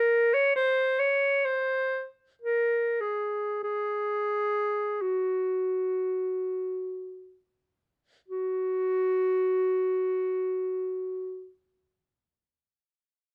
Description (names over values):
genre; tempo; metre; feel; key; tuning
classical, free, expressive piece for unaccompanied clarinet; 29-71 BPM; 3/4; rubato; unclear; A4 = 440 Hz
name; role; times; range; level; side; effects
clear clarinet; solo; 0.0-11.5 s; F#4 to C#5; -28 LUFS; equal; none
room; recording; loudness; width
light reverb; none; -28 LUFS; mono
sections
0.0-8.3 A section; 8.3-13.0 B section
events
slowing down 0.0-8.3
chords
none